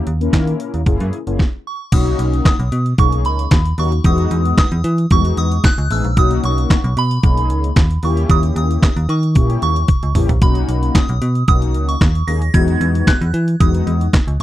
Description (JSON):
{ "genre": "early-eighties boogie funk", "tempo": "113 BPM", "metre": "4/4", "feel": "straight", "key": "B major", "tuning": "A4 = 445 Hz", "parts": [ { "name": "mellow synth brass", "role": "accompaniment", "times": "0.0-14.4 s", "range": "G3 to A#4", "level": "-22 LUFS", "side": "left 4 dB", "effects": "chorus" }, { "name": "metallic FM bass", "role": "bass", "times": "0.1-14.4 s", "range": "F#1 to E3", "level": "-16 LUFS", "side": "equal", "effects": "none" }, { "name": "detuned 8-bit digital drum machine", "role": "drums", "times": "0.1-14.4 s", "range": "crash cymbal, handclaps, hi-hat, kick drum, snare drum, toms", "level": "-14 LUFS", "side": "equal", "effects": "none" }, { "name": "soft synth bell", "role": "melody", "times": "1.7-14.4 s", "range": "B5 to A#6", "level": "-23 LUFS", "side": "right 2 dB", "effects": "chorus, phaser, tape echo" } ], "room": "little or no reverb", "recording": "dry, close 1970s-style studio recording", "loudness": "-13 LUFS", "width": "side -14 dB against mid", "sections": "0.0-1.9 A section; 1.9-14.4 B section", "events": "stop 1.4-1.9; drum fill 9.9-10.4", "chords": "0.0 D#7(no3); 0.9 F#7; 1.9 Bmaj7; 4.0 Emaj9; 6.2 Bmaj7; 8.0 D#7b9; 10.4 Bmaj7; 12.5 Emaj9" }